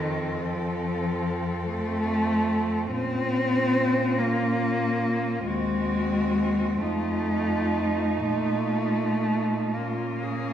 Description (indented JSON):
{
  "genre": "classical, lyrical piece for cello ensemble",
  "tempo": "40-49 BPM (dotted quarters)",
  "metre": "12/8",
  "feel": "rubato",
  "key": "Bb minor",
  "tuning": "A4 = 439 Hz",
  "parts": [
    { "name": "rich cello", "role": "melody", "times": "0.0-10.5 s", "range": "F4 to A4", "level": "-34 LUFS", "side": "left 5 dB", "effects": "none" },
    { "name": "rich cello", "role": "second line", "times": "0.0-10.5 s", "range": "C4 to Eb4", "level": "-32 LUFS", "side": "right 5 dB", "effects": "none" },
    { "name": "rich cello", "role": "accompaniment", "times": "0.0-10.5 s", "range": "Eb3 to C4", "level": "-25 LUFS", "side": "left 1 dB", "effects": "none" },
    { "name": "warm cello", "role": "bass", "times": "0.0-10.5 s", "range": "Eb2 to Bb2", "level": "-31 LUFS", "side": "right 2 dB", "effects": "none" }
  ],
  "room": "wet scoring stage reverb, RT60 1.7 s",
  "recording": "heard from further back in the room",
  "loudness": "-23 LUFS",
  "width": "side -10 dB against mid",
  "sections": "0.0-10.5 A section",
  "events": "none",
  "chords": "0.0 F; 2.9 Bbm; 5.5 Cdim/Eb; 6.8 F7; 8.3 Bbm"
}